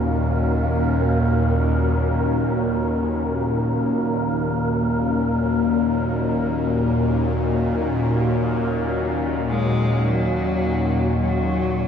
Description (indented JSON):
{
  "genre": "ambient",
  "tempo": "free time",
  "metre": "none",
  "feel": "none",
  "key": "unclear",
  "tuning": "A4 = 440 Hz",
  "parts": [
    { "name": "dark analog pad", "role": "sustained chords", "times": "0.0-11.9 s", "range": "Bb3 to Gb4", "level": "-26 LUFS", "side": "left 1 dB", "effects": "chorus" },
    { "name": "bowed-like drone", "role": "drone", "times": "0.0-11.9 s", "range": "Eb2 to Bb2", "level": "-21 LUFS", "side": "left 1 dB", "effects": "built-in reverb, phaser" },
    { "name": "wind-like tuned noise texture", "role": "texture", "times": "0.0-11.9 s", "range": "Gb3 to Bb4", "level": "-27 LUFS", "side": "equal", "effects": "built-in reverb" },
    { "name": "rich cello", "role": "melody", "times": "9.5-11.9 s", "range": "Gb3 to Ab3", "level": "-26 LUFS", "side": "equal", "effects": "none" }
  ],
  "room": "wet huge ambient reverb, RT60 8.7 s",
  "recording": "cassette tape",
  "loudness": "-19 LUFS",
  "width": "side -8 dB against mid",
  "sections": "0.0-11.9 A section",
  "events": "none",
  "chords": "0.0 Gb6/Eb"
}